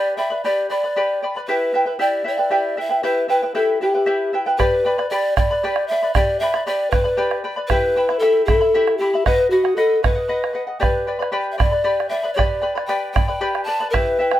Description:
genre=andean folk, Andean ensemble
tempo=77 BPM (dotted quarters)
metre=6/8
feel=straight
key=unclear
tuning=A4 = 441 Hz
part: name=breathy mellow pan flute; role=melody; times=0.0-14.4 s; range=F#4 to A5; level=-19 LUFS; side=left 1 dB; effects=none
part: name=charango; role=accompaniment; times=0.0-14.4 s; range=E4 to B5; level=-22 LUFS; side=left 1 dB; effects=none
part: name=bombo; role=percussion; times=4.6-14.4 s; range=none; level=-21 LUFS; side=right 2 dB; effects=none
room=light reverb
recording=none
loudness=-17 LUFS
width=side -13 dB against mid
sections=0.0-4.6 A section; 4.6-14.4 A section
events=none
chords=0.0 G; 1.5 Em; 4.6 G; 7.7 Em; 9.3 B; 10.8 G

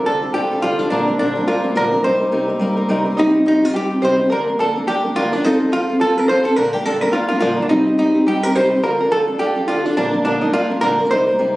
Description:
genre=celtic folk, Celtic reel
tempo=212 BPM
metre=4/4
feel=swing 58% on 8ths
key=unclear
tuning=A4 = 440 Hz
part: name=vintage hollow-body jazz guitar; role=melody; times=0.0-11.6 s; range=D4 to C5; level=-18 LUFS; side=equal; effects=plate reverb
part: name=fingerpicked steel-string acoustic guitar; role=accompaniment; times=0.0-11.6 s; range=Bb2 to Bb4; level=-18 LUFS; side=equal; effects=none
part: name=accordion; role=drone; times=0.0-3.2 s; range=C3 to G3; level=-27 LUFS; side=equal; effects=none
part: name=open-back banjo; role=second line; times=3.2-11.6 s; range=D4 to C5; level=-23 LUFS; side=right 2 dB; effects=none
room=moderate studio reverb, RT60 0.8 s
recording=recorded on a phone in the room, studio reverb, nothing above 11.0 kHz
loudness=-15 LUFS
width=side -18 dB against mid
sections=0.0-3.2 A section; 3.2-11.6 A section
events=none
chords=0.0 Dm; 0.9 Bb; 2.0 Cm7; 3.2 Cm; 4.3 Bb/D; 5.4 F; 6.6 Bb; 7.7 Cm; 8.8 Dm; 10.0 Bb

